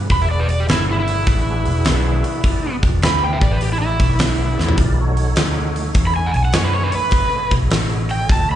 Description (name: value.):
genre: blues rock power trio and southern rock.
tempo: 102 BPM.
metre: 4/4.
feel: swing 67% on 8ths.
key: E mixolydian.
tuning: A4 = 441 Hz.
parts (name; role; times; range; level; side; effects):
tonewheel organ; sustained chords; 0.0-8.6 s; D4 to D#5; -30 LUFS; right 3 dB; overdrive, chorus vibrato, slow rotary speaker.
vintage muted picked electric bass; bass; 0.0-8.6 s; E1 to F#2; -19 LUFS; equal; none.
overdriven slide guitar; melody; 0.1-8.6 s; E4 to B5; -22 LUFS; right 1 dB; slapback echo, digital delay.
huge arena drum kit; drums; 0.1-8.5 s; hi-hat, kick drum, snare drum, toms; -19 LUFS; equal; none.
room: small room ambience.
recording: live gig heard through the venue's PA, club reverb, nothing above 10.4 kHz.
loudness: -15 LUFS.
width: side -11 dB against mid.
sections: 0.0-8.6 A section.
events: electric slide guitar solo 0.0-8.6; drum fill 4.5.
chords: 0.1 E7; 4.8 B7.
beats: | 0.10 0.69 1.27 1.86 | 2.44 3.03 3.62 4.20 | 4.79 5.37 5.96 6.54 | 7.13 7.72 8.30.